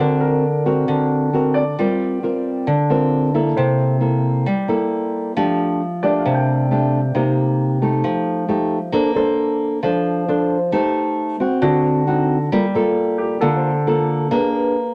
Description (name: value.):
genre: bossa nova.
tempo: 134 BPM.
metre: 4/4.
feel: straight.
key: F major, Bb major from 8.9 s.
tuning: A4 = 440 Hz.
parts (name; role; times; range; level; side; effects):
clear grand piano; accompaniment; 0.0-14.3 s; F#4 to G5; -27 LUFS; equal; none.
nylon-string guitar; accompaniment; 0.0-14.9 s; C3 to C5; -19 LUFS; equal; none.
room: wet studio reverb, RT60 0.5 s.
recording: none.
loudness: -19 LUFS.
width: mono.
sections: 0.0-8.9 A section; 8.9-14.9 B section.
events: none.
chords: 0.0 Daug7; 1.8 Gm11; 3.6 C6; 5.4 F69; 7.1 Cm7; 8.0 F9; 8.9 Bbmaj9; 10.7 Am7b5; 11.6 D7b9; 12.5 Gm9; 14.3 Bb7b9.